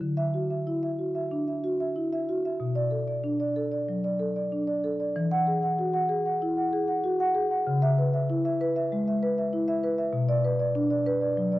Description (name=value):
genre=classical, contemporary piece for solo marimba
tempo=96 BPM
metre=4/4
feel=rubato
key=D major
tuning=A4 = 440 Hz
part: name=marimba with soft mallets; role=solo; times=0.0-11.6 s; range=B2 to F#5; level=-24 LUFS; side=equal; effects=none
room=moderate concert hall reverb, RT60 2.4 s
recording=worn, warbling old tape, cassette tape, warbly pitch drift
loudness=-24 LUFS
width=side -16 dB against mid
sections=0.0-11.6 A section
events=none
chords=0.0 Dadd9; 2.6 Bm7; 5.2 Eadd9; 7.7 C#m7; 10.1 Bm